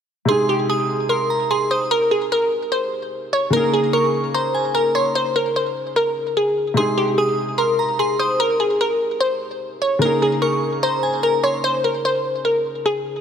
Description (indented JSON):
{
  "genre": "hip hop",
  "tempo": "148 BPM",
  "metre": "4/4",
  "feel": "half-time",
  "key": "Ab major",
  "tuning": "A4 = 440 Hz",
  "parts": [
    { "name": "glassy wavetable pluck", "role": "melody", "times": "0.3-13.2 s", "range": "G4 to Db5", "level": "-19 LUFS", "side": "left 1 dB", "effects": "chorus" },
    { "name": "glassy synth bell", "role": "second line", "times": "0.3-11.6 s", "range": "Ab5 to Eb6", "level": "-25 LUFS", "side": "right 3 dB", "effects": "chorus, digital delay" },
    { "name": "dark grand piano", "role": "accompaniment", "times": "0.3-13.2 s", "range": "C3 to Ab4", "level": "-25 LUFS", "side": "left 1 dB", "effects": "none" }
  ],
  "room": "moderate lush hall reverb, RT60 2.8 s",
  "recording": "none",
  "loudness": "-17 LUFS",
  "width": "side -8 dB against mid",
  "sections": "0.3-13.2 A section",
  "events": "none",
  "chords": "0.3 Ab; 3.5 Eb7sus4; 6.8 Ab; 10.0 Eb7sus4"
}